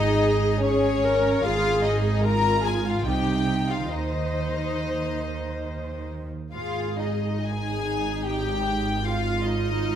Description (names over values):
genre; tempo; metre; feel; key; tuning
classical, slow romantic movement for string orchestra; 71 BPM; 3/4; uneven beats, rubato; Ab major; A4 = 440 Hz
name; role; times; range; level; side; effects
warm studio violin section; melody; 0.0-10.0 s; Db5 to Bb5; -29 LUFS; left 4 dB; none
warm symphonic violin section; second line; 0.0-10.0 s; Db4 to Bb4; -29 LUFS; left 2 dB; none
dark chamber viola section; accompaniment; 0.0-10.0 s; Eb4 to C5; -28 LUFS; right 1 dB; none
dark chamber cello section; bass; 0.0-10.0 s; Ab2 to Eb3; -31 LUFS; right 2 dB; none
rich symphonic double bass section; bass; 0.0-10.0 s; Ab1 to Eb2; -29 LUFS; right 2 dB; none
room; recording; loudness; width
moderate scoring stage reverb, RT60 1.8 s; none; -22 LUFS; side -9 dB against mid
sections
0.0-10.0 A section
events
none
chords
0.0 Ab5; 3.1 Cmadd11; 3.9 Cm/Eb; 6.5 Ab5